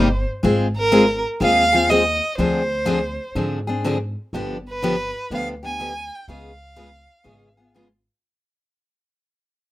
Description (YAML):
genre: acoustic string swing (jazz manouche)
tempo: 123 BPM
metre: 4/4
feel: swing 65% on 8ths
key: unclear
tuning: A4 = 440 Hz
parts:
  - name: warm violin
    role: melody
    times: 0.0-7.7 s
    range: Bb4 to Ab5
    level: -20 LUFS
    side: right 1 dB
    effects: none
  - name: picked acoustic archtop guitar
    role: accompaniment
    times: 0.0-7.9 s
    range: Db3 to Ab4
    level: -30 LUFS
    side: right 6 dB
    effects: none
  - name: picked steel-string acoustic guitar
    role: accompaniment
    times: 0.0-7.9 s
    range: Db3 to Ab4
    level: -20 LUFS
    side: left 2 dB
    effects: none
  - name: upright bass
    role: bass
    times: 0.0-8.0 s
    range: G1 to Ab2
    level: -27 LUFS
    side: equal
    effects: none
room: moderate studio reverb, RT60 0.6 s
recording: rough home demo mix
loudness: -18 LUFS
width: side -16 dB against mid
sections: 0.4-8.2 A section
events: fade-out 0.4-8.2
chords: 0.4 Ab69; 2.4 Dm7b5; 4.3 G7b9; 6.3 Db7